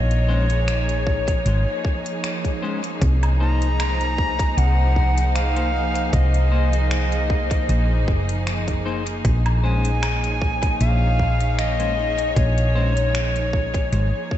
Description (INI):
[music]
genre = ambient dub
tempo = 77 BPM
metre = 4/4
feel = swing 54% on 16ths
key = Bb minor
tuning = A4 = 440 Hz
[part]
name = bright reedy silver concert flute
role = melody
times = 0.0-14.4 s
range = Db5 to Bb5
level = -26 LUFS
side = left 1 dB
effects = dub echo
[part]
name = clear symphonic string section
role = sustained chords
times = 0.0-14.4 s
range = F3 to Db5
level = -28 LUFS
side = equal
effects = none
[part]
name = hollow-body short-scale fingered electric bass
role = bass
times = 0.0-14.1 s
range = Gb1 to C2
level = -20 LUFS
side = equal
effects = none
[part]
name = organic electronic drum kit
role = drums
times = 0.1-14.1 s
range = finger snaps, hi-hat, woodblock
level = -33 LUFS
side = equal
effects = dub echo
[part]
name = clean electric guitar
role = stabs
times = 0.3-12.9 s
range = Ab3 to C5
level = -33 LUFS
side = left 5 dB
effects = dub echo
[part]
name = electronic kick drum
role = drums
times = 1.1-14.4 s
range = none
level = -23 LUFS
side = equal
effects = overdrive
[sound]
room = light reverb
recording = nothing above 8.0 kHz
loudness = -18 LUFS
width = side -12 dB against mid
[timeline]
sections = 0.0-14.4 A section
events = none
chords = 0.0 Bbm7; 3.0 Cm7b5; 9.2 Bbm7